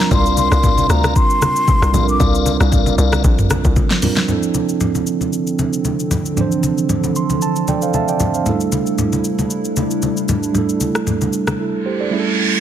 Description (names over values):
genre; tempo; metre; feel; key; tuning
amapiano; 115 BPM; 4/4; swing 55% on 16ths; D minor; A4 = 440 Hz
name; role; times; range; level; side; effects
mellow hollow concert flute; melody; 0.0-2.3 s; Bb5 to D6; -19 LUFS; left 1 dB; ping-pong delay
mellow tine electric piano; accompaniment; 0.0-12.6 s; E3 to C6; -19 LUFS; right 6 dB; none
deep house drum kit; drums; 0.0-11.6 s; hi-hat, kick drum, rim click, shaker, snare drum, toms; -19 LUFS; left 1 dB; soft clipping on snare
tonewheel organ; stabs; 0.1-3.2 s; Bb4 to F5; -24 LUFS; left 11 dB; chorus vibrato, ping-pong delay
tight log drum bass; bass; 0.1-3.8 s; Bb1 to D2; -17 LUFS; left 1 dB; none
congas; percussion; 0.1-11.6 s; none; -22 LUFS; left 2 dB; none
hollow soft pad; sustained chords; 5.0-12.6 s; D3 to A4; -24 LUFS; left 1 dB; chorus
reverse cymbal; sound effects; 11.9-12.6 s; none; -20 LUFS; right 5 dB; none
room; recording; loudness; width
light reverb, digital ambience; dense, heavily limited modern master; -14 LUFS; side -10 dB against mid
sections
0.0-4.3 A section; 4.3-12.6 B section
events
drop 0.0-4.3; tine electric piano fill 6.9-8.5; reverse cymbal 11.9-12.6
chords
0.0 C9sus4; 4.3 Dm7; 8.5 A7sus4